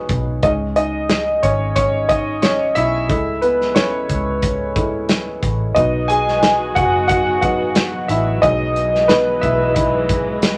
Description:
piano-driven pop; 90 BPM; 4/4; swing 56% on 16ths; E major; A4 = 439 Hz
warm upright piano; accompaniment; 0.0-10.6 s; F#3 to G#5; -19 LUFS; equal
vintage muted fingered electric bass; bass; 0.0-10.6 s; F#1 to C#2; -27 LUFS; equal
modern studio drum kit; drums; 0.1-10.6 s; hi-hat, kick drum, snare drum; -23 LUFS; equal
warm studio string section; sustained chords; 5.8-10.6 s; E3 to F#4; -29 LUFS; equal
moderate small room ambience, RT60 0.5 s; -17 LUFS; mono
0.0-10.6 A section
upright piano solo 0.0-10.6
0.4 C#sus2; 3.1 Amaj9; 5.8 B; 8.4 Emaj7/B
| 0.43 1.10 1.76 2.43 | 3.10 3.76 4.43 5.10 | 5.76 6.43 7.10 7.76 | 8.43 9.10 9.76 10.43

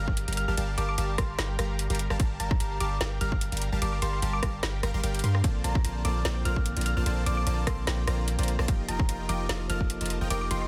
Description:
future bass; 148 BPM; 4/4; swing 54% on 16ths, half-time; G minor; A4 = 440 Hz
thumb-piano-like synth pluck; melody; 0.0-10.7 s; Bb5 to F6; -38 LUFS; equal; chorus, sidechain pumping, dub echo
supersaw stab; riff; 0.0-10.7 s; F3 to C6; -37 LUFS; equal; sidechain pumping
long sustained 808-style bass; bass; 0.0-10.7 s; F1 to G2; -32 LUFS; equal; sidechain pumping
electronic kick drum; drums; 0.1-9.9 s; -30 LUFS; equal
trap drum kit; drums; 0.2-10.6 s; hi-hat, ride cymbal, rim click, snare drum; -36 LUFS; equal; soft clipping on snare
tine electric piano; accompaniment; 5.4-10.7 s; D3 to Bb4; -40 LUFS; equal; overdrive, sidechain pumping
little or no reverb; dense, heavily limited modern master; -28 LUFS; mono
0.0-10.7 A section
0.0 Gm7; 5.4 Bbmaj9; 8.7 F9sus4
0.17 | 0.57 0.98 1.39 1.79 | 2.20 2.60 3.01 3.41 | 3.82 4.22 4.63 5.03 | 5.44 5.84 6.25 6.66 | 7.06 7.47 7.87 8.28 | 8.68 9.09 9.49 9.90 | 10.30

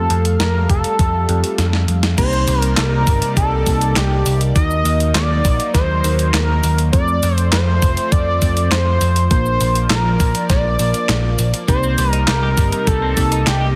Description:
synthwave; 101 BPM; 4/4; straight; A4 = 441 Hz
unison lead; melody; 0.0-13.8 s; G4 to Eb5; -23 LUFS; equal; tape echo
lush unison pad; sustained chords; 0.0-13.8 s; C3 to F5; -28 LUFS; equal; chorus, phaser, sidechain pumping
mellow FM electric piano; stabs; 0.0-13.8 s; A3 to Bb4; -30 LUFS; equal; chorus, phaser, cassette tape
picked electric bass; bass; 0.0-13.7 s; F1 to Bb2; -20 LUFS; equal
clean 12-bit digital drum machine; drums; 0.1-13.6 s; cabasa, crash cymbal, handclaps, hi-hat, snare drum; -24 LUFS; equal; overdrive
electronic kick drum; drums; 0.7-13.3 s; -19 LUFS; equal; overdrive
twelve-string electric guitar; arpeggios; 11.7-13.7 s; G3 to Bb4; -29 LUFS; equal; tape echo
light reverb; dense, heavily limited modern master; -16 LUFS; mono
0.0-2.2 A section; 2.2-13.8 B section
drum fill 1.6-2.2
0.0 Fadd9; 2.2 Cm7; 4.6 Ebm; 6.9 F; 9.3 Bb; 11.7 Cm7
0.40 0.99 1.59 | 2.18 2.77 3.37 3.96 | 4.56 5.15 5.75 6.34 | 6.93 7.53 8.12 8.71 | 9.31 9.90 10.50 11.09 | 11.69 12.28 12.87 13.47

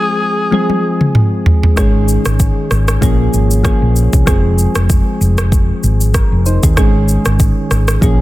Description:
afrobeats; 96 BPM; 4/4; swing 55% on 16ths; A4 = 440 Hz
raspy alto saxophone; melody; 0.0-1.1 s; Ab4; -18 LUFS; left 1 dB; tape echo
soft electric-piano-like synth keys; accompaniment; 0.0-8.2 s; Eb3 to C5; -17 LUFS; left 1 dB; chorus
afro-pop drum kit; drums; 0.5-8.2 s; kick drum, rim click, shaker, toms; -13 LUFS; equal
hollow-body short-scale fingered electric bass; bass; 1.8-8.2 s; F1 to Eb2; -13 LUFS; equal
digital ambience; dense, heavily limited modern master; -10 LUFS; side -16 dB against mid
0.0-1.8 A section; 1.8-8.2 B section
break 0.0-1.8; drum fill 0.5-1.8
0.0 Fm; 1.8 Absus4; 3.0 Bbm7; 4.3 Fm; 6.8 Absus4
0.52 1.15 | 1.77 2.40 3.02 3.65 | 4.27 4.90 5.52 6.15 | 6.77 7.40 8.02

